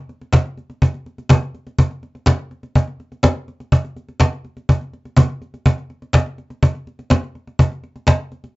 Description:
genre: pop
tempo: 124 BPM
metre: 4/4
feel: straight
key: none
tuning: none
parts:
  - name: cajon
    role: drums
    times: 0.1-8.5 s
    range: none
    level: -13 LUFS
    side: equal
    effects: none
room: moderate studio ambience, RT60 0.5 s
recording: rough home demo mix, nothing above 7.7 kHz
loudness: -17 LUFS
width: side -22 dB against mid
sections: 0.0-4.7 A section; 4.7-8.6 A section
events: drop 0.0-4.7, 4.7-8.6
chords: none

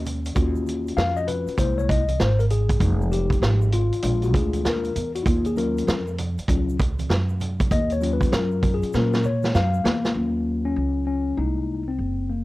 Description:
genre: hip hop, jazz-hop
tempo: 98 BPM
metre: 4/4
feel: swing 64% on 16ths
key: Eb minor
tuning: A4 = 439 Hz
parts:
  - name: mellow tine electric piano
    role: accompaniment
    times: 0.0-12.4 s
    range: F3 to F5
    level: -25 LUFS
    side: left 4 dB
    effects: fast stereo tremolo, cassette tape
  - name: upright bass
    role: bass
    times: 0.0-12.4 s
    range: F1 to Bb2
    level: -24 LUFS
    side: right 1 dB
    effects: none
  - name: vintage drum kit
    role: drums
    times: 0.1-10.2 s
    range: hi-hat, kick drum, snare drum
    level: -25 LUFS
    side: right 1 dB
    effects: cassette tape
  - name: congas and egg shaker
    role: percussion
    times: 0.1-10.1 s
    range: none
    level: -39 LUFS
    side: right 9 dB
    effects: none
room: little or no reverb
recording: home recording on cassette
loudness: -20 LUFS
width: side -18 dB against mid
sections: 0.4-10.2 A section; 10.2-12.4 B section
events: tine electric piano solo 0.4-10.2, 10.2-12.4; drum fill 8.9-10.2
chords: 0.4 Ebm9; 1.6 Caug7; 2.8 Fm7; 4.0 Bb7; 5.3 Ebm9; 11.4 Caug7

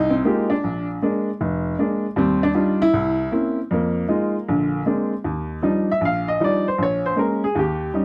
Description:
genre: solo jazz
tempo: 156 BPM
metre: 4/4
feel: swing 65% on 8ths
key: Eb major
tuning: A4 = 439 Hz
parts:
  - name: warm upright piano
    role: solo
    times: 0.0-8.0 s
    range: F1 to F5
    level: -21 LUFS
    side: equal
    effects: none
room: light reverb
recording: close, detailed microphones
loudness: -21 LUFS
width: mono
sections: 0.0-5.2 A section; 5.2-8.0 B section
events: upright piano solo 5.2-8.0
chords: 0.0 Fm9; 0.6 Bb7; 2.2 Ebmaj9; 2.9 C7b9; 3.7 Fm7; 4.5 Bb9; 5.2 Ebmaj9; 6.8 Bbm7

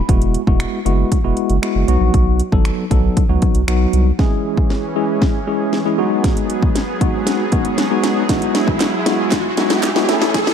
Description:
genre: dance-pop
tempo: 117 BPM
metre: 4/4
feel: straight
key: E major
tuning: A4 = 439 Hz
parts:
  - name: tine electric piano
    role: accompaniment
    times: 0.0-10.5 s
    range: F#3 to A4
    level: -19 LUFS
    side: left 1 dB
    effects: medium stereo tremolo, sidechain pumping
  - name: saturated sub bass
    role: bass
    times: 0.0-4.1 s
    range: E1 to C#2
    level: -16 LUFS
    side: equal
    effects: sidechain pumping
  - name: house drum kit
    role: drums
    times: 0.1-10.5 s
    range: finger snaps, hi-hat, kick drum, snare drum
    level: -17 LUFS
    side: equal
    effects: none
  - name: soft supersaw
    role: sustained chords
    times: 4.2-10.5 s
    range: E3 to A4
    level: -24 LUFS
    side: right 1 dB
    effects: sidechain pumping
  - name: riser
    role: sound effects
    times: 6.4-10.5 s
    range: none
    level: -25 LUFS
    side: equal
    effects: none
  - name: group handclap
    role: percussion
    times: 8.8-9.9 s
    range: none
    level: -29 LUFS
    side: right 5 dB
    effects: none
room: light reverb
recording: dark, warm production, high-pass filter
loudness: -14 LUFS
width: side -8 dB against mid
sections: 0.0-4.2 A section; 4.2-10.5 B section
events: build-up 4.2-10.5; drum fill 4.2-10.5; filter sweep 4.2-10.5; riser 6.4-10.5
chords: 0.1 Eadd9; 1.9 B; 4.2 C#m; 6.0 G#m7; 8.3 Eadd9

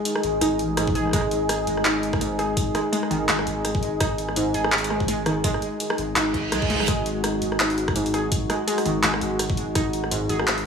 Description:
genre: half-time drum and bass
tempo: 167 BPM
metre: 4/4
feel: swing 57% on 16ths, half-time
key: unclear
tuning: A4 = 442 Hz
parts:
  - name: deep dark ambient pad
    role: sustained chords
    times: 0.0-10.7 s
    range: G#3 to G#4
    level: -26 LUFS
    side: left 1 dB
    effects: chorus, built-in reverb, sidechain pumping
  - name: warbly dusty pluck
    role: arpeggios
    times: 0.0-10.5 s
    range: G#2 to G#4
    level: -26 LUFS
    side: right 1 dB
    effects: chorus, dub echo
  - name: drum and bass drum kit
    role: drums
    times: 0.1-10.6 s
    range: handclaps, hi-hat, rim click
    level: -25 LUFS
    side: equal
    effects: overdrive
  - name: saturated sub bass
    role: bass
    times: 0.2-10.7 s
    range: F#1 to C#2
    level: -31 LUFS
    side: left 1 dB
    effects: none
  - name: electronic kick drum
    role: drums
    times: 0.9-9.8 s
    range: none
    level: -27 LUFS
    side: equal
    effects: overdrive
  - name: reverse cymbal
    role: sound effects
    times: 6.3-6.9 s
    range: none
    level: -28 LUFS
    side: right 4 dB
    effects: none
room: moderate lush hall reverb, RT60 1.6 s, digital ambience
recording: small room ambience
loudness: -21 LUFS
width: side -6 dB against mid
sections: 0.0-10.7 A section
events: reverse cymbal 6.3-6.9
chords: 0.0 G#5

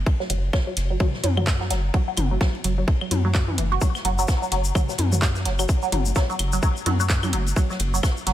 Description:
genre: minimal techno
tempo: 128 BPM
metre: 4/4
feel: swing 58% on 16ths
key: unclear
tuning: A4 = 442 Hz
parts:
  - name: rubbery square bass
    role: bass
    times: 0.0-8.3 s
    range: F#1 to F#2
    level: -23 LUFS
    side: equal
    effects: sidechain pumping
  - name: electronic kick drum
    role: drums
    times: 0.1-8.1 s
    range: none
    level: -23 LUFS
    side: equal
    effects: none
  - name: swinging big-band drum kit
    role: drums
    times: 0.1-8.3 s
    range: ride cymbal, snare drum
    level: -36 LUFS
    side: left 2 dB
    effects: sidechain pumping on cymbals, high-pass filter on cymbals, high-pass filter on snare, high-pass filter on room
  - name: resonant blip pluck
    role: riff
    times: 0.2-8.3 s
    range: E3 to F#4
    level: -27 LUFS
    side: right 1 dB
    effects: phaser, lush chorus, sidechain pumping, ping-pong delay
  - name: booming analog drum machine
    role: drums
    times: 0.3-8.3 s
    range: handclaps, hi-hat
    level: -29 LUFS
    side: right 1 dB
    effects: none
  - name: electronic claves and toms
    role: percussion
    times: 0.5-8.1 s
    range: none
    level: -30 LUFS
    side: left 3 dB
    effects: dub echo
  - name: tube shaker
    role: percussion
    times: 3.8-8.2 s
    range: none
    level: -32 LUFS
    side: left 6 dB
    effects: none
room: digital ambience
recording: none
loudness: -20 LUFS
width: side -12 dB against mid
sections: 0.0-8.3 A section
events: none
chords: none

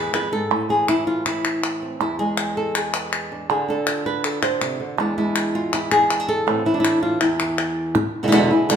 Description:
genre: flamenco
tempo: 161 BPM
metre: 4/4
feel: straight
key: E phrygian dominant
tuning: A4 = 438 Hz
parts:
  - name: flamenco guitar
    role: melody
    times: 0.0-8.8 s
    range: E2 to C5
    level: -20 LUFS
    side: equal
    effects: none
  - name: palmas hand claps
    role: percussion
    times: 0.1-8.8 s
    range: none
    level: -25 LUFS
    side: left 1 dB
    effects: none
room: wet large studio reverb, RT60 1.3 s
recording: minimal, uncompressed stereo recording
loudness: -19 LUFS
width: side -8 dB against mid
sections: 0.0-8.0 A section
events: none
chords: 0.0 E; 0.5 A5; 2.0 E; 3.5 Dm; 5.0 E7; 6.5 Amadd9; 7.2 N.C.; 8.0 E7

